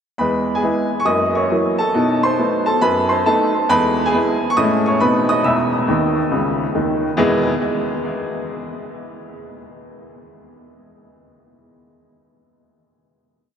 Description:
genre	jazz, stride piano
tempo	138 BPM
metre	4/4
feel	swing 64% on 8ths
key	E major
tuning	A4 = 439 Hz
part	bright upright piano	solo	0.2-7.5 s	E1 to E6	-16 LUFS	equal	diffuse ambient delay
room	wet cathedral reverb, RT60 6.5 s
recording	dreamy mix soaked in reverb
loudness	-15 LUFS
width	side -7 dB against mid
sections	0.2-7.2 A section; 7.2-8.9 final chord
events	upright piano fill 5.9-7.2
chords	0.2 E; 1.1 F#7; 1.9 B7b9; 3.7 E; 4.6 Amaj7; 5.0 B7b9; 5.4 C#madd9/E; 7.2 E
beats	| 0.19 0.63 1.07 1.51 | 1.95 2.38 2.82 3.26 | 3.69 4.13 4.57 5.00 | 5.44 5.87 6.31 6.74 | 7.18

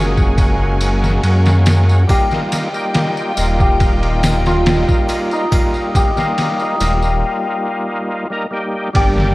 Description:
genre	trip hop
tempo	70 BPM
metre	4/4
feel	straight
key	unclear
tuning	A4 = 440 Hz
part	santur	melody	0.0-9.3 s	Eb4 to G#4	-21 LUFS	left 1 dB	tape echo
part	overdriven tonewheel organ	accompaniment	0.0-9.3 s	G3 to Bb4	-21 LUFS	equal	chorus vibrato, harmonic tremolo
part	warm symphonic violin section	sustained chords	0.0-9.3 s	F4 to G#5	-27 LUFS	right 1 dB	vintage 12-bit sampler grit
part	dark detuned saw bass	bass	0.0-9.3 s	Eb1 to F#2	-15 LUFS	equal	none
part	trip hop sampler-style drum kit	drums	0.2-9.3 s	kick drum, ride cymbal, snare drum	-17 LUFS	equal	overdrive, small room ambience
part	tambourine and triangle	percussion	0.2-7.2 s	none	-31 LUFS	left 1 dB	none
room	light reverb, studio reverb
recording	worn, warbling old tape, cassette tape, warbly pitch drift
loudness	-13 LUFS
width	side -19 dB against mid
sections	0.0-8.9 A section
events	break 7.2-8.9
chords	0.0 F#add9; 2.1 Ebadd9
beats	0.38 1.23 | 2.09 2.95 3.80 4.66 | 5.52 6.38 7.23 8.09 | 8.95

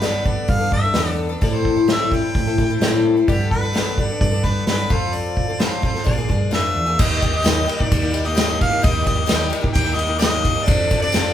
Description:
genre	folk rock and heartland rock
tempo	129 BPM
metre	4/4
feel	straight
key	G mixolydian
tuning	A4 = 445 Hz
part	warm harmonica	melody	0.0-11.3 s	G4 to G5	-23 LUFS	equal	none
part	picked twelve-string acoustic guitar	accompaniment	0.0-11.3 s	A2 to A4	-22 LUFS	left 4 dB	none
part	hollow-body short-scale picked electric bass	bass	0.0-11.3 s	Bb1 to A2	-24 LUFS	right 1 dB	none
part	unplugged drum kit	drums	0.0-11.3 s	crash cymbal, hi-hat, kick drum, ride cymbal, snare drum	-20 LUFS	right 1 dB	none
part	tonewheel organ	sustained chords	7.0-11.3 s	F3 to A4	-33 LUFS	right 1 dB	slow rotary speaker, chorus vibrato
part	tambourine	percussion	7.5-11.2 s	none	-34 LUFS	right 6 dB	none
room	moderate large studio reverb, RT60 1.1 s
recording	band playing live in one room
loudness	-16 LUFS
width	side -10 dB against mid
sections	0.0-7.0 A section; 7.0-11.3 B section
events	none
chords	0.0 Gadd9; 1.4 Am7; 3.3 Gadd9; 4.9 Fadd9; 6.1 Bb7; 7.0 Eb; 10.7 F6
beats	0.02 0.49 0.95 | 1.42 1.88 2.35 2.81 | 3.27 3.74 4.20 4.67 | 5.13 5.60 6.06 6.52 | 6.99 7.45 7.91 8.37 | 8.84 9.30 9.76 10.22 | 10.68 11.15

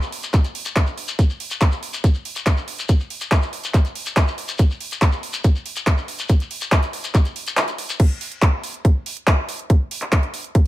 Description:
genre	trance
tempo	141 BPM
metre	4/4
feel	straight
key	none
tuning	none
part	shekere	percussion	0.0-8.0 s	none	-29 LUFS	left 4 dB	none
part	drum and bass drum kit	drums	0.1-10.6 s	crash cymbal, handclaps, hi-hat	-24 LUFS	equal	overdrive, small room ambience
part	electronic kick drum	drums	0.3-10.6 s	none	-15 LUFS	equal	overdrive, small room ambience
room	little or no reverb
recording	none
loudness	-18 LUFS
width	side -16 dB against mid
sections	0.0-8.0 A section; 8.0-10.7 B section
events	kick drops out 7.6-8.0; drop 8.0-10.7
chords	none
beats	0.34 0.76 | 1.19 1.61 2.04 2.46 | 2.89 3.32 3.74 4.17 | 4.59 5.02 5.44 5.87 | 6.29 6.72 7.15 7.57 | 8.00 8.42 8.85 9.27 | 9.70 10.12 10.55

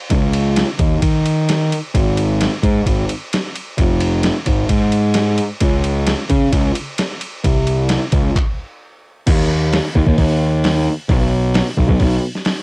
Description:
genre	indie rock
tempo	131 BPM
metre	4/4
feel	straight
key	unclear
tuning	A4 = 440 Hz
part	fuzz picked electric bass	bass	0.1-12.2 s	F1 to Eb3	-15 LUFS	equal	overdrive
part	boom bap sampler-style drum kit	drums	0.1-12.6 s	crash cymbal, handclaps, hi-hat, kick drum, ride cymbal, snare drum	-18 LUFS	equal	cassette tape
room	little or no reverb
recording	home recording on cassette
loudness	-14 LUFS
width	side -38 dB against mid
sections	0.0-9.3 A section; 9.3-12.6 B section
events	stop 8.4-9.3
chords	none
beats	| 0.10 0.56 1.02 1.48 | 1.94 2.40 2.86 3.32 | 3.78 4.24 4.70 5.16 | 5.62 6.07 6.53 6.99 | 7.45 7.91 8.37 8.82 | 9.28 9.73 10.19 10.64 | 11.10 11.55 12.01 12.46

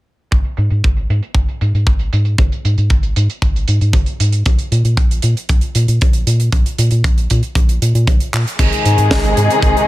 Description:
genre	italo disco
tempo	116 BPM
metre	4/4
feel	straight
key	unclear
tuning	A4 = 442 Hz
part	round analog bass	bass	0.3-9.7 s	Ab1 to Bb2	-14 LUFS	equal	none
part	kick drum	drums	0.3-9.7 s	none	-15 LUFS	equal	none
part	tight funk drum kit	drums	0.3-9.9 s	crash cymbal, handclaps, hi-hat, snare drum	-24 LUFS	right 4 dB	low-pass filter on hats, low-pass filter on cymbals, low-pass filter on snare, low-pass filter on room
part	clear studio string section	sustained chords	8.6-9.9 s	C3 to Ab4	-14 LUFS	left 2 dB	vintage 12-bit sampler grit
room	small room reverb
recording	none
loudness	-12 LUFS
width	side -16 dB against mid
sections	0.3-8.6 A section; 8.6-9.9 B section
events	drum fill 8.3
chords	0.3 N.C.; 8.6 Ab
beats	| 0.32 0.84 1.35 1.87 | 2.39 2.90 3.42 3.94 | 4.46 4.97 5.49 6.01 | 6.53 7.04 7.56 8.08 | 8.60 9.11 9.63

